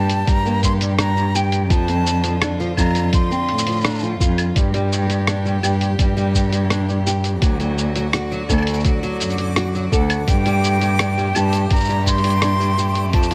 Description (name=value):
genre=folktronica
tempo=84 BPM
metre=4/4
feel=straight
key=G minor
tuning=A4 = 439 Hz
part: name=breathy silver concert flute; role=melody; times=0.0-4.2, 9.9-13.3 s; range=F#5 to C6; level=-26 LUFS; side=equal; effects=delay
part: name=clear string quartet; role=sustained chords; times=0.0-13.3 s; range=Bb2 to G4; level=-33 LUFS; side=equal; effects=none
part: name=nylon-string guitar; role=arpeggios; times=0.0-13.3 s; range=F3 to A4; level=-28 LUFS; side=equal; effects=delay
part: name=dark cello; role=bass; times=0.0-13.3 s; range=D2 to A2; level=-22 LUFS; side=equal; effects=none
part: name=lo-fi sampler-style drum kit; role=drums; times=0.1-13.3 s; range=cabasa, claves, hi-hat, rim click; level=-26 LUFS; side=equal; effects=none
part: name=electronic kick drum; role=drums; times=0.3-13.3 s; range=none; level=-21 LUFS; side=equal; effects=none
part: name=backwards swelling texture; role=texture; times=6.5-13.3 s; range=D6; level=-38 LUFS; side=equal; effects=built-in reverb
room=light reverb, small room ambience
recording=none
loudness=-19 LUFS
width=mono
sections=0.0-13.3 A section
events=none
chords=0.0 Gm; 1.7 F6; 4.6 Gm; 7.4 D; 10.3 Gmadd9